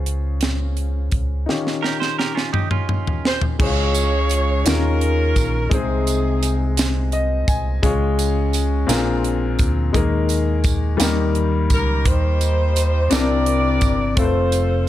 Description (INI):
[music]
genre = slow gospel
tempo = 57 BPM (dotted quarters)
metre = 6/8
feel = straight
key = unclear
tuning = A4 = 440 Hz
[part]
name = warm grand piano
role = accompaniment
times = 0.0-14.9 s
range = Bb2 to A5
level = -22 LUFS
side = left 4 dB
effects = none
[part]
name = fingered electric bass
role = bass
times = 0.0-14.9 s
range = F1 to Eb2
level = -20 LUFS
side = equal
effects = none
[part]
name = tight funk drum kit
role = drums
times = 0.1-14.7 s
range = crash cymbal, hi-hat, kick drum, snare drum, toms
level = -21 LUFS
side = equal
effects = none
[part]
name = clean electric guitar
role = second line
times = 1.8-3.6 s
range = Db4 to C5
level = -25 LUFS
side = right 9 dB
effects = none
[part]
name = warm saxophone section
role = melody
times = 3.3-6.8, 11.7-14.9 s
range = C4 to D5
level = -23 LUFS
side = right 1 dB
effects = none
[part]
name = tambourine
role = percussion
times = 3.9-14.9 s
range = none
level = -30 LUFS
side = right 10 dB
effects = none
[sound]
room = light reverb, small room ambience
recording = none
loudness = -17 LUFS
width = side -13 dB against mid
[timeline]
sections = 0.0-3.6 A section; 3.6-14.9 B section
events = drum fill 1.5-3.6; grand piano fill 6.8-7.8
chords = 0.0 Dbmaj7; 1.5 Eb9; 3.6 Db; 4.7 Eb9sus4; 5.7 Ab/C; 7.8 Db; 8.9 Bb9; 9.9 Ebsus4; 11.0 Eb; 13.1 C13; 14.2 F